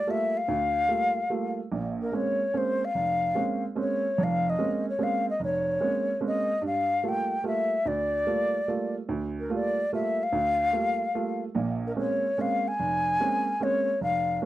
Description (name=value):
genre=jazz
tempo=146 BPM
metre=3/4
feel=swing 66% on 8ths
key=unclear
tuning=A4 = 440 Hz
part: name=breathy mellow concert flute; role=melody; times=0.0-14.4 s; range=Bb4 to Ab5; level=-26 LUFS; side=left 2 dB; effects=none
part: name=warm upright piano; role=accompaniment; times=0.1-14.5 s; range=F1 to F4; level=-30 LUFS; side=right 4 dB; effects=none
room=light reverb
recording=dry, close 1970s-style studio recording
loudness=-25 LUFS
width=side -14 dB against mid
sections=0.0-14.5 A section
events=none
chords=0.0 Gm9; 1.7 Bbm9; 6.6 Gm9; 11.6 Bbm9